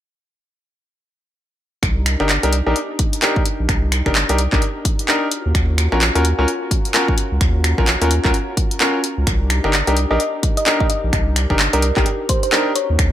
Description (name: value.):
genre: UK garage, two-step garage.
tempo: 129 BPM.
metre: 4/4.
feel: swing 60% on 16ths.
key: unclear.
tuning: A4 = 440 Hz.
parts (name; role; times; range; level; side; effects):
warm analog pad; sustained chords; 1.8-13.1 s; Db4 to Bb4; -29 LUFS; left 1 dB; chorus, vintage 12-bit sampler grit, sidechain pumping.
saturated sub bass; bass; 1.8-13.1 s; G1 to Eb2; -18 LUFS; equal; sidechain pumping.
electronic kick drum; drums; 1.8-13.1 s; none; -19 LUFS; equal; none.
house drum kit; drums; 1.8-13.1 s; finger snaps, handclaps, hi-hat; -20 LUFS; equal; none.
bright concert grand piano; stabs; 2.2-12.7 s; Db4 to Bb4; -21 LUFS; left 1 dB; dub echo.
thumb-piano-like synth pluck; melody; 10.1-13.1 s; G4 to Eb5; -22 LUFS; right 1 dB; chorus, dub echo.
room: light reverb.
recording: none.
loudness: -15 LUFS.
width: side -11 dB against mid.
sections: 1.8-13.1 A section.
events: none.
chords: 1.8 Cm9; 5.3 Ebm9; 9.3 Cm9.